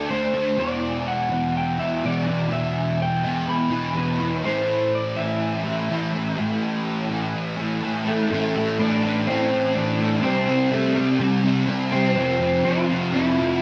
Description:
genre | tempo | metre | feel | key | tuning
rock | 124 BPM | 4/4 | straight | A dorian, A minor from 8.3 s | A4 = 440 Hz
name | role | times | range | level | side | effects
electric guitar through a small old amp | melody | 0.0-13.6 s | G3 to B5 | -27 LUFS | equal | spring reverb, slapback echo
fuzz guitar | riff | 0.0-13.6 s | E2 to D4 | -24 LUFS | equal | distortion, ensemble chorus
room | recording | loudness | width
light reverb | none | -23 LUFS | mono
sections
0.0-8.3 A section; 8.3-13.6 B section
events
none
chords
0.0 D5; 0.6 E7(no3); 4.4 A5; 8.3 Am; 10.2 C5; 12.2 F5

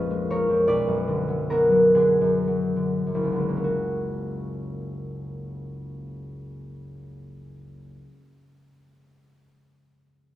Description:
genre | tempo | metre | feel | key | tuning
classical, solo harp piece | 33-54 BPM (dotted quarters) | 6/8 | rubato | F# major | A4 = 440 Hz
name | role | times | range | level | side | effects
concert harp | solo | 0.0-8.4 s | F#1 to A#5 | -22 LUFS | equal | none
room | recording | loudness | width
light reverb | close, detailed microphones | -21 LUFS | side -14 dB against mid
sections
0.0-3.7 A section; 3.7-10.0 B section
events
slowing down 0.0-3.7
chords
0.0 A#m7; 0.7 Bm6; 3.7 F#add9

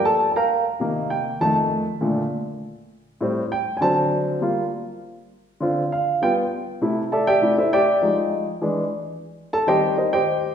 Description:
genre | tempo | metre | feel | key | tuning
jazz | 200 BPM | 4/4 | straight | Bb major, G minor from 4.4 s | A4 = 438 Hz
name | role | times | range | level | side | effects
warm upright piano | solo | 0.0-10.5 s | F2 to Bb5 | -19 LUFS | equal | none
room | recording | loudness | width
wet recital hall reverb, RT60 1.4 s | recorded in a church or concert hall | -19 LUFS | side -8 dB against mid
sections
0.0-4.4 A section; 4.4-10.5 A section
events
upright piano solo 0.0-10.5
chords
0.0 Gm7; 0.8 Cm7; 1.4 F7; 2.0 Bbmaj7; 3.2 Am7; 3.8 D7; 4.4 Gm7; 5.6 Dm7; 6.2 G7; 6.8 C69; 8.0 Fm7; 8.6 E7; 9.2 Eb6

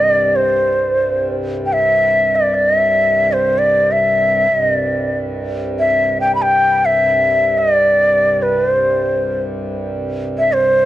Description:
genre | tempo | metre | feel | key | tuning
indian classical, Hindustani | free time | none | none | C raga hamsadhwani | A4 = 440 Hz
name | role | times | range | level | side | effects
breathy bright bansuri | melody | 0.0-10.9 s | C5 to B5 | -13 LUFS | equal | plate reverb, tape echo
pedal harmonium | drone | 0.0-10.9 s | C2 to G2 | -23 LUFS | equal | stereo widening, plate reverb
room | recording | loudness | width
moderate studio reverb, RT60 0.6 s | cassette tape | -13 LUFS | side -14 dB against mid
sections
0.0-10.9 A section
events
none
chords
none

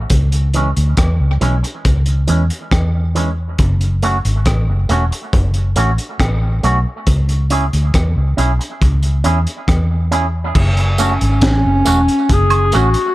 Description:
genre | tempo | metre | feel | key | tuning
dub reggae | 69 BPM | 4/4 | straight | F# minor | A4 = 438 Hz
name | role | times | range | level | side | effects
vintage muted fingered electric bass | bass | 0.0-12.9 s | E1 to E2 | -15 LUFS | equal | none
crunchy breakbeat drum kit | drums | 0.1-13.1 s | crash cymbal, hi-hat, kick drum, rim click, snare drum | -18 LUFS | equal | none
electric guitar with an envelope filter | accompaniment | 0.5-13.0 s | E3 to G#4 | -21 LUFS | right 2 dB | tape echo
dark clarinet | melody | 11.0-13.1 s | C#4 to G#4 | -15 LUFS | equal | tape echo
tambourine and woodblock | percussion | 11.0-12.9 s | none | -22 LUFS | right 6 dB | tape echo
room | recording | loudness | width
light reverb, small room ambience | none | -13 LUFS | side -17 dB against mid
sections
0.0-10.6 A section; 10.6-13.1 B section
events
none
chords
0.1 C#m; 3.6 F#m; 7.1 C#m; 10.6 F#m

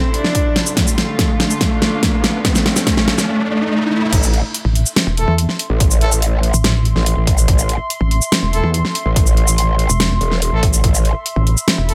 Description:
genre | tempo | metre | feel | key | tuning
heavy wobble dubstep | 143 BPM | 4/4 | half-time | A minor | A4 = 440 Hz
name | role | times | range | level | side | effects
warm cello | melody | 0.0-4.1 s | A3 to D4 | -22 LUFS | equal | tape echo
warm studio string section | sustained chords | 0.0-3.3 s | C3 to F4 | -30 LUFS | equal | sidechain pumping
riser | sound effects | 0.2-4.1 s | none | -27 LUFS | equal | none
warbly tape-like pad | texture | 0.0-11.9 s | D4 to C6 | -29 LUFS | equal | chorus, built-in reverb, sidechain pumping
dubstep drum kit | drums | 0.1-11.9 s | crash cymbal, hi-hat, shaker, snare drum | -20 LUFS | equal | none
electronic kick drum | drums | 0.3-10.9 s | none | -19 LUFS | equal | none
growl bass | bass | 4.1-11.1 s | E1 to A1 | -18 LUFS | equal | chorus, overdrive
pulsing pluck wobble bass | bass | 4.7-11.9 s | E1 to E2 | -18 LUFS | equal | chorus, overdrive
bright brass ensemble | stabs | 5.2-11.9 s | A3 to A4 | -26 LUFS | equal | tape echo
room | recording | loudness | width
light reverb | none | -16 LUFS | mono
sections
0.0-4.1 A section; 4.1-11.9 B section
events
build-up 0.0-4.1; drum fill 0.0-3.3; riser 0.2-4.1; drop 4.1-11.9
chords
0.0 Am; 0.8 Dm; 4.1 Am

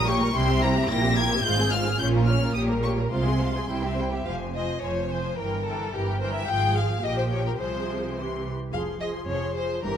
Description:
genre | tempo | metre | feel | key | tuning
quick classical-period movement for string orchestra | 108 BPM | 2/4 | straight | F minor | A4 = 440 Hz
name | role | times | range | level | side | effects
rich studio violin section | melody | 0.0-10.0 s | F5 to Bb6 | -31 LUFS | left 3 dB | none
rich chamber violin section | second line | 0.0-10.0 s | Db4 to Bb5 | -30 LUFS | left 3 dB | none
rich symphonic viola section | accompaniment | 0.0-10.0 s | E3 to C5 | -30 LUFS | right 1 dB | none
clear symphonic cello section | bass | 0.0-10.0 s | F2 to C3 | -28 LUFS | right 1 dB | none
warm chamber double bass section | bass | 0.0-10.0 s | F1 to C2 | -30 LUFS | right 3 dB | none
room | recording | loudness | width
moderate scoring stage reverb, RT60 1.4 s | close, detailed microphones | -23 LUFS | side -9 dB against mid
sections
0.0-4.3 A section; 4.3-10.0 B section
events
none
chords
0.3 C; 0.9 C7/Bb; 1.4 Fm/Ab; 2.0 Bbm; 2.5 Gdim/Bb; 3.1 Fm/C; 3.7 C; 4.3 Fm; 5.4 Edim/G; 6.5 Fm/Ab; 7.0 Bbm6; 7.6 Fm/C; 8.2 C; 8.7 Fm

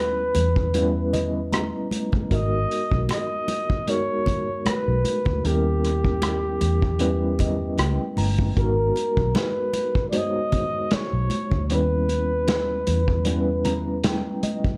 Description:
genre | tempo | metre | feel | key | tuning
lush 1970s-style soul | 77 BPM | 4/4 | swing 54% on 16ths | G# minor | A4 = 440 Hz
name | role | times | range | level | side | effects
breathy flugelhorn | melody | 0.0-14.1 s | G4 to D#5 | -29 LUFS | equal | none
tine electric piano | accompaniment | 0.0-14.8 s | G3 to A#5 | -30 LUFS | equal | medium tremolo
vintage muted fingered electric bass | bass | 0.0-14.2 s | G1 to E2 | -27 LUFS | equal | none
congas | percussion | 0.3-14.8 s | none | -35 LUFS | equal | none
vintage drum kit | drums | 0.4-14.8 s | hi-hat, kick drum, rim click, snare drum | -28 LUFS | equal | none
room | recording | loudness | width
moderate studio reverb, RT60 0.6 s | none | -23 LUFS | mono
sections
0.0-14.8 A section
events
tine electric piano fill 0.7-2.3, 7.0-8.6, 13.3-14.8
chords
0.0 D#7b9b13; 2.3 G#m9; 5.4 D#7b9b13; 8.6 G#m9; 11.7 D#7b9b13

